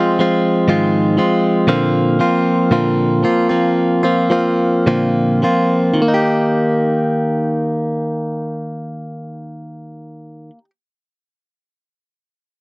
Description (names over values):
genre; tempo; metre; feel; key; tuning
pop; 52-62 BPM; 4/4; straight; Eb major; A4 = 440 Hz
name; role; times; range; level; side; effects
direct-recorded clean electric guitar; solo; 0.0-10.7 s; Ab2 to G4; -14 LUFS; equal; none
room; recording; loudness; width
little or no reverb; dry, close 1970s-style studio recording; -13 LUFS; side -29 dB against mid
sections
0.0-6.0 A section; 6.0-10.6 B section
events
slowing down 0.0-6.0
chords
0.0 Ab6; 1.7 Bbadd9; 6.0 Eb